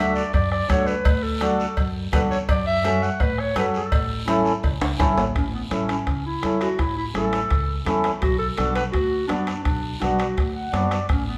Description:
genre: latin, cumbia.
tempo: 167 BPM.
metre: 4/4.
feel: straight.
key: A major.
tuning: A4 = 443 Hz.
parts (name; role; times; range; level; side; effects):
clear clarinet; second line; 0.0-11.4 s; B3 to F#5; -28 LUFS; equal; none.
mellow accordion; accompaniment; 0.0-11.1 s; B3 to F#5; -28 LUFS; equal; none.
upright bass; bass; 0.0-11.4 s; A1 to A2; -30 LUFS; equal; none.
guiro; percussion; 0.2-11.4 s; none; -41 LUFS; equal; none.
bombo; percussion; 0.3-11.3 s; none; -28 LUFS; equal; none.
congas; percussion; 0.3-11.3 s; none; -32 LUFS; equal; none.
cowbell and timbales; percussion; 0.3-11.3 s; none; -35 LUFS; equal; none.
room: wet large studio reverb, RT60 1.2 s.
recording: band playing live in one room.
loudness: -22 LUFS.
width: mono.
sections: 0.0-5.4 A section; 5.4-11.4 B section.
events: clarinet solo 0.0-5.4, 5.4-11.4; drum fill 4.8-5.4; accordion fill 10.4-11.1.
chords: 0.0 D; 2.5 F#m; 3.9 A; 8.2 Bm.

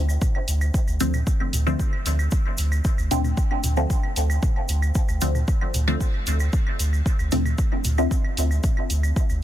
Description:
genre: dub techno.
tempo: 114 BPM.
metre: 4/4.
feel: straight.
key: D minor.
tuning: A4 = 440 Hz.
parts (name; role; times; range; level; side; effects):
soft dub sub bass; bass; 0.0-9.4 s; D2; -22 LUFS; equal; sidechain pumping.
electronic claves and toms; percussion; 0.1-9.4 s; none; -34 LUFS; right 2 dB; overdrive, sidechain pumping on toms, sidechain pumping on perc, dub echo.
tube shaker; percussion; 0.1-9.4 s; none; -35 LUFS; left 1 dB; none.
electronic kick drum; drums; 0.2-9.3 s; none; -23 LUFS; equal; overdrive.
electronic hi-hat; drums; 0.5-9.0 s; none; -32 LUFS; right 2 dB; none.
filtered dub chord stab; stabs; 1.0-8.2 s; D3 to C4; -28 LUFS; left 1 dB; phaser, sidechain pumping, dub echo.
room: digital ambience.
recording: dense, heavily limited modern master.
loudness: -20 LUFS.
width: side -12 dB against mid.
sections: 0.0-9.4 A section.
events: filter sweep on synth stab 0.0-9.4.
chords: 0.0 Dm7.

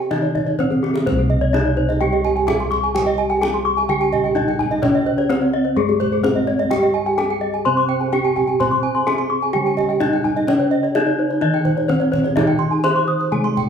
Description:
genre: Balinese gamelan.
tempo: 127 BPM.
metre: 4/4.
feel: straight.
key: C pelog.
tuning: A4 = 440 Hz.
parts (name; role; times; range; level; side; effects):
gamelan-type bronze metallophone; melody; 0.0-13.7 s; Ab3 to C5; -21 LUFS; right 1 dB; none.
gamelan-type bronze metallophone; accompaniment; 0.0-13.7 s; C3 to C4; -26 LUFS; equal; none.
gamelan-type bronze metallophone; arpeggios; 0.0-13.7 s; G4 to Db6+35c; -24 LUFS; right 6 dB; none.
gamelan-type bossed gongs; bass; 0.0-13.7 s; C2 to C5; -24 LUFS; equal; none.
kendang; percussion; 0.0-13.7 s; none; -27 LUFS; right 1 dB; none.
gamelan-type bronze metallophone; arpeggios; 0.1-13.4 s; G4 to Eb6; -23 LUFS; left 7 dB; none.
room: wet large studio reverb, RT60 1.1 s.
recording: band playing live in one room.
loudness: -16 LUFS.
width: side -7 dB against mid.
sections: 0.0-1.1 A section; 1.1-13.7 B section.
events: drum fill 0.7-1.1.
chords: none.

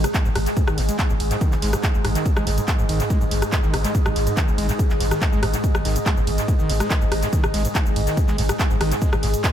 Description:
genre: driving peak-time techno.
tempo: 142 BPM.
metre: 4/4.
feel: straight.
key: unclear.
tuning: A4 = 440 Hz.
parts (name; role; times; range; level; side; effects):
overdriven acid bass; riff; 0.0-9.5 s; G#2 to G#3; -28 LUFS; equal; distortion, sidechain pumping, dub echo.
saturated sub bass; bass; 0.0-9.3 s; G#1; -24 LUFS; equal; overdrive, sidechain pumping, low-pass filter.
swarming drone; drone; 0.1-9.5 s; G#2; -31 LUFS; equal; built-in reverb, sidechain pumping.
techno drum kit; drums; 0.0-9.5 s; handclaps, hi-hat, ride cymbal, rim click, shaker; -26 LUFS; equal; dub echo.
impact; sound effects; 0.0-0.6 s; none; barely audible; none; none.
deep dark ambient pad; texture; 0.0-9.5 s; G#3 to D#6; -28 LUFS; equal; chorus, built-in reverb, sidechain pumping.
electronic kick drum; drums; 0.1-9.5 s; none; -22 LUFS; equal; none.
room: little or no reverb.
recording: echo-heavy mix.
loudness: -18 LUFS.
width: side -10 dB against mid.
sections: 0.0-9.5 A section.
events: impact 0.0-0.6.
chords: 0.0 G#5.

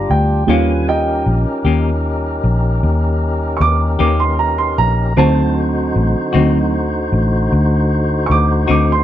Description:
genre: slow blues.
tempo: 51 BPM (dotted quarters).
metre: 12/8.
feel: straight.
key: unclear.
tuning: A4 = 440 Hz.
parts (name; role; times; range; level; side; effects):
dark upright piano; accompaniment; 0.0-9.0 s; F#3 to D6; -19 LUFS; right 5 dB; none.
tonewheel organ; sustained chords; 0.0-9.0 s; D3 to Ab5; -21 LUFS; left 1 dB; slow rotary speaker.
vintage muted fingered electric bass; bass; 0.0-9.0 s; A1 to Eb2; -15 LUFS; left 1 dB; none.
clean electric guitar; accompaniment; 0.5-8.9 s; D3 to G4; -19 LUFS; left 8 dB; tremolo.
room: light reverb, digital ambience.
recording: none.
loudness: -13 LUFS.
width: side -11 dB against mid.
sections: 0.0-9.0 A section.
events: upright piano solo 0.0-9.0.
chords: 0.5 Eb7; 5.2 D7b9.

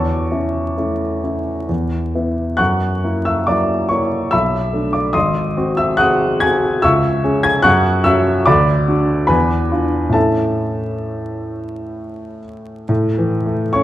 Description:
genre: classical, romantic character piece for solo piano.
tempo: 63-74 BPM.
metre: 3/4.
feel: rubato.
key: A major.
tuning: A4 = 441 Hz.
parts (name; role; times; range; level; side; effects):
warm upright piano; solo; 0.0-13.8 s; G#1 to G#6; -15 LUFS; equal; none.
room: wet recital hall reverb, RT60 1.8 s.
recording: dark, warm production, vinyl crackle.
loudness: -14 LUFS.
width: side -13 dB against mid.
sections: 0.0-12.9 A section.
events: none.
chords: 0.0 A/E; 1.7 E5; 2.6 F#7; 4.3 Bm7; 5.1 G#7; 6.8 C#m; 7.6 F#5; 8.5 Bm/D; 9.3 E7b9; 10.2 A.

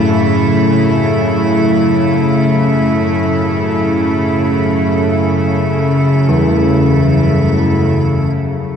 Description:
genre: dark ambient drone.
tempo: free time.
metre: none.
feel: none.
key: F# minor.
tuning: A4 = 438 Hz.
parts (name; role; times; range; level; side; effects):
rich studio cello section; sustained chords; 0.0-8.4 s; A3 to E4; -16 LUFS; equal; none.
old church bells; arpeggios; 0.0-8.8 s; E3 to A3; -21 LUFS; equal; diffuse ambient delay.
bowed-like drone; drone; 0.0-8.8 s; F#2 to C#3; -14 LUFS; left 1 dB; built-in reverb.
icy glass pad; texture; 0.0-8.8 s; A4 to B4; -23 LUFS; right 3 dB; chorus, built-in reverb.
room: wet cathedral reverb, RT60 6.7 s.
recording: dark, warm production.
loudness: -11 LUFS.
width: side -7 dB against mid.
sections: 0.0-8.4 A section.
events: none.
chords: 0.0 F#m7.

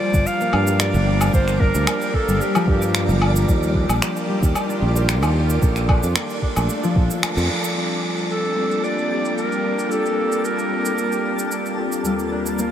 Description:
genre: organic downtempo.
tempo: 112 BPM.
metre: 4/4.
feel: straight.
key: G minor.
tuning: A4 = 439 Hz.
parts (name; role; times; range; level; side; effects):
bright clarinet; melody; 0.0-3.2, 8.3-11.8 s; G4 to F5; -25 LUFS; right 1 dB; vintage 12-bit sampler grit, analog delay.
bowed-like drone; sustained chords; 0.3-12.7 s; Eb3 to Bb4; -27 LUFS; equal; built-in reverb, sidechain pumping.
concert harp; arpeggios; 0.0-12.7 s; F3 to Bb4; -25 LUFS; left 2 dB; analog delay.
twinkling granular texture; texture; 0.4-12.7 s; D5 to A5; -34 LUFS; right 3 dB; built-in reverb.
sustaining fretless electric bass; bass; 0.1-7.5 s; G1 to G2; -20 LUFS; equal; sidechain pumping.
electronic cabasa, woodblock and finger snaps; drums; 0.1-12.7 s; none; -26 LUFS; equal; low-pass filter on perc, low-pass filter on snare, low-pass filter on room.
electronic kick drum; drums; 0.1-7.1 s; none; -19 LUFS; equal; none.
bell-like tine electric piano; accompaniment; 7.7-12.7 s; Eb2 to Bb4; -26 LUFS; left 2 dB; ensemble chorus, sidechain pumping, analog delay.
room: wet huge ambient reverb, RT60 8.4 s.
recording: dreamy mix soaked in reverb.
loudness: -17 LUFS.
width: side -10 dB against mid.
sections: 0.0-7.8 A section; 7.8-12.7 B section.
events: band accent 7.2.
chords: 0.0 Gm7; 3.5 Ebmaj7; 5.6 Bbmaj7; 7.8 Gm7; 12.1 Ebmaj7.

